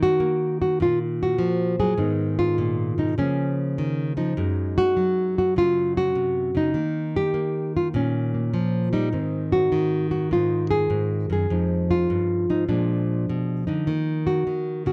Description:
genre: solo jazz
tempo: 101 BPM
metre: 4/4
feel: swing 67% on 8ths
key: Eb dorian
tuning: A4 = 440 Hz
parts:
  - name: nylon-string guitar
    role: solo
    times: 0.0-14.9 s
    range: F2 to Ab4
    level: -23 LUFS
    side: equal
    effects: none
room: light reverb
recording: dry, close 1970s-style studio recording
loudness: -23 LUFS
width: mono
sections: 0.0-14.9 A section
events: none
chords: 0.0 Ebm; 2.0 Abmadd9; 3.2 Db69; 4.4 Gbsus2; 6.7 Eb9; 9.1 Ab; 11.5 Fm7; 12.7 Bb7b9; 13.9 Ebm

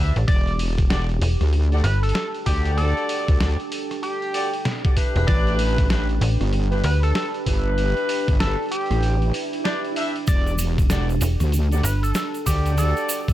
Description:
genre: glitch hop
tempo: 96 BPM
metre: 4/4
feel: swing 62% on 16ths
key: E minor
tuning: A4 = 441 Hz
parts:
  - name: mellow horn section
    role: stabs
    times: 0.0-13.3 s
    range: D4 to E5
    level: -29 LUFS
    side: left 1 dB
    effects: sidechain pumping, tape echo
  - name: slap-like FM bass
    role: bass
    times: 0.0-7.1, 11.2-12.1 s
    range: E1 to D2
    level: -19 LUFS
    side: equal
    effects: none
  - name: deep dark ambient pad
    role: texture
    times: 0.0-13.3 s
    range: D4 to B4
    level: -30 LUFS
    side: right 2 dB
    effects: chorus, built-in reverb, sidechain pumping
  - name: boom bap sampler-style drum kit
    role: drums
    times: 0.2-13.3 s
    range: hi-hat, rim click, snare drum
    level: -30 LUFS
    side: equal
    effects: none
  - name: sync lead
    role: melody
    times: 0.3-13.0 s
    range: G4 to D5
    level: -30 LUFS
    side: equal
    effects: chorus, cassette tape, tape echo
  - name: wobble bass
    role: bass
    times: 0.3-13.3 s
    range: E1 to D2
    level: -21 LUFS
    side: equal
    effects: chorus, tube saturation
  - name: electronic kick drum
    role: drums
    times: 0.3-13.3 s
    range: none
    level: -20 LUFS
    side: equal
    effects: none
  - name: swell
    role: sound effects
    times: 9.2-10.3 s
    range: none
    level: -32 LUFS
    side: right 3 dB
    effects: none
  - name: egg shaker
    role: percussion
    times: 10.3-13.3 s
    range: none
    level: -32 LUFS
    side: right 6 dB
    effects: none
room: little or no reverb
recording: none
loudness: -19 LUFS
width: side -14 dB against mid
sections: 0.0-13.3 A section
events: swell 9.2-10.3; kick drops out 9.7-10.3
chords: 0.3 Em11; 5.3 A9sus4; 10.3 Em11

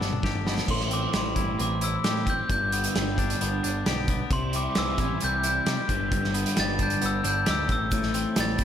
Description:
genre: indie rock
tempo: 133 BPM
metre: 4/4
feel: straight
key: A minor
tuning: A4 = 440 Hz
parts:
  - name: crunchy overdriven guitar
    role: riff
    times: 0.0-8.6 s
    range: G2 to E4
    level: -33 LUFS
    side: right 6 dB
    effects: ensemble chorus, slapback echo
  - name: twangy electric guitar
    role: riff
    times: 0.0-8.6 s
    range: G2 to G4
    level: -31 LUFS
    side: left 7 dB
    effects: spring reverb
  - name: growling picked electric bass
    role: bass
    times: 0.0-8.6 s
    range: G1 to C3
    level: -32 LUFS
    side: equal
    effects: overdrive
  - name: loose indie drum kit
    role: drums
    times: 0.0-8.6 s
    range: crash cymbal, hi-hat, kick drum, snare drum, toms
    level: -28 LUFS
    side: right 1 dB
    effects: none
  - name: glockenspiel with hard plastic mallets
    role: melody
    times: 0.7-8.6 s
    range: C6 to A6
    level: -29 LUFS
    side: equal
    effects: slapback echo
  - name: tube shaker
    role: percussion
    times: 7.9-8.5 s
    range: none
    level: -43 LUFS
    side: right 7 dB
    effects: none
room: moderate lush hall reverb, RT60 1.8 s, studio ambience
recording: big arena sound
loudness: -23 LUFS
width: side -9 dB against mid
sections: 0.7-8.6 A section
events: drum fill 0.0-0.7; glockenspiel solo 0.7-8.6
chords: 0.0 G; 0.7 Am7; 2.5 G; 4.3 C; 5.9 G; 7.7 Am7

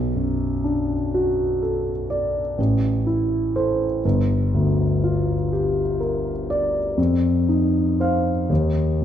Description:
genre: classical, impressionist solo piano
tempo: 41 BPM (dotted quarters)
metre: 9/8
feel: rubato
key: G major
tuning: A4 = 440 Hz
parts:
  - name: warm concert grand piano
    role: solo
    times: 0.0-9.0 s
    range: G1 to F5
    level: -19 LUFS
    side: equal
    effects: none
room: moderate recital hall reverb, RT60 1.7 s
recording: dark, warm production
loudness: -19 LUFS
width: side -10 dB against mid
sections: 0.0-9.0 A section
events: none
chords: 0.0 Bm7; 2.6 Am; 4.0 Gm7; 7.0 F5; 8.5 N.C.

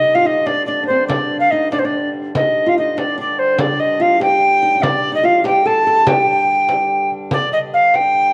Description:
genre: medieval dance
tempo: 97 BPM (dotted quarters)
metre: 6/8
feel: straight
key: unclear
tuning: A4 = 440 Hz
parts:
  - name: alto recorder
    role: melody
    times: 0.0-8.3 s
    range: C5 to A5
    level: -17 LUFS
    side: equal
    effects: none
  - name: nylon-string guitar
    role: second line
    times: 0.0-7.1 s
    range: C4 to A4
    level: -24 LUFS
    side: equal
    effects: none
  - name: pedal harmonium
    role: drone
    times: 0.0-8.3 s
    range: G2 to D3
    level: -30 LUFS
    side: equal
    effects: none
  - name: frame drum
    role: percussion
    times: 0.5-8.2 s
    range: none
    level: -26 LUFS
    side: equal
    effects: none
room: wet echo chamber reverb, RT60 1.8 s, small room ambience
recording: none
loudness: -16 LUFS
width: mono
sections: 0.0-7.3 A section; 7.3-8.3 B section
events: none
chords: none

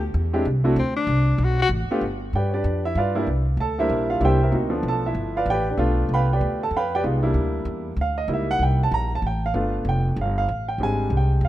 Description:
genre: jazz, small-group swing and bop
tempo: 191 BPM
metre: 4/4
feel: swing 61% on 8ths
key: G mixolydian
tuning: A4 = 441 Hz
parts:
  - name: breathy tenor saxophone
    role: melody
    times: 0.0-1.7 s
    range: C4 to F#4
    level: -25 LUFS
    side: left 4 dB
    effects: none
  - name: upright bass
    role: bass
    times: 0.0-11.5 s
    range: F1 to G2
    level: -23 LUFS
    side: equal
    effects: none
  - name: warm baby grand piano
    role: accompaniment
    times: 0.3-11.5 s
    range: F3 to B5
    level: -23 LUFS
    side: right 1 dB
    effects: none
room: light reverb, studio reverb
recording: rough home demo mix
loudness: -20 LUFS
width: side -14 dB against mid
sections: 0.0-2.0 A section; 2.0-11.5 A section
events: tenor saxophone solo 0.0-2.0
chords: 0.1 E7alt; 0.8 D5; 2.0 G7; 3.3 C7; 4.5 G7; 7.0 C7; 8.3 C#dim7; 9.5 G7; 10.8 E7#9b13 (rootless)

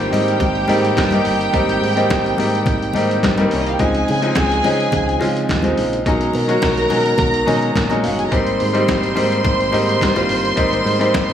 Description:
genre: disco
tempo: 106 BPM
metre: 4/4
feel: straight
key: Ab major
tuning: A4 = 440 Hz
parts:
  - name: dark studio violin section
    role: second line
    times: 0.0-11.3 s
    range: Bb3 to C6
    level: -21 LUFS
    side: right 1 dB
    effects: none
  - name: bright grand piano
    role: accompaniment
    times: 0.0-11.3 s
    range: F3 to F#4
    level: -19 LUFS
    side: left 3 dB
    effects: none
  - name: mellow tonewheel organ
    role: sustained chords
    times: 0.0-11.3 s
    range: Db3 to G4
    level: -24 LUFS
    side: right 4 dB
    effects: chorus vibrato, slow rotary speaker
  - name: fingered electric bass with an envelope filter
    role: bass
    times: 0.0-11.3 s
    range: G1 to Db3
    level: -22 LUFS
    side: right 1 dB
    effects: none
  - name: trip hop sampler-style drum kit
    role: drums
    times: 0.0-11.3 s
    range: hi-hat, kick drum, snare drum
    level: -23 LUFS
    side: equal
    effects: gated reverb
  - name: congas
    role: percussion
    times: 0.1-11.3 s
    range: none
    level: -24 LUFS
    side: left 3 dB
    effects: none
room: light reverb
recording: small room ambience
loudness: -14 LUFS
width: side -9 dB against mid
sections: 0.0-11.3 A section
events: none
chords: 0.0 Abmaj7; 3.8 Dbmaj9; 6.1 B6; 8.3 Abmaj7

